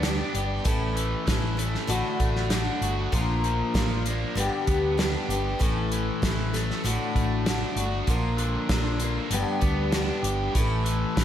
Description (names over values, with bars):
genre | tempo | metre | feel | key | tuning
folk rock and heartland rock | 97 BPM | 4/4 | straight | unclear | A4 = 440 Hz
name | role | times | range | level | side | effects
overdriven harmonica | second line | 0.0-0.6 s | D5 | -40 LUFS | right 3 dB | slapback echo, analog delay
picked twelve-string acoustic guitar | accompaniment | 0.0-11.2 s | G2 to A4 | -29 LUFS | left 3 dB | none
biting overdriven guitar | riff | 0.0-11.2 s | G2 to G4 | -31 LUFS | right 1 dB | none
hollow-body short-scale fingered electric bass | bass | 0.0-11.2 s | G1 to D2 | -29 LUFS | equal | none
loose indie drum kit | drums | 0.0-11.2 s | hi-hat, kick drum, snare drum | -28 LUFS | equal | none
room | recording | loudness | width
moderate scoring stage reverb, RT60 2.0 s | big arena sound | -23 LUFS | side -10 dB against mid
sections
0.0-11.2 A section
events
none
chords
0.0 G; 0.7 A; 1.9 D/A; 3.1 Bb; 4.4 G; 5.6 A; 6.8 D/A; 8.1 Bb; 9.3 G; 10.6 A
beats
0.04 | 0.66 1.28 1.90 2.52 | 3.13 3.75 4.37 4.99 | 5.61 6.23 6.85 7.46 | 8.08 8.70 9.32 9.94 | 10.56 11.18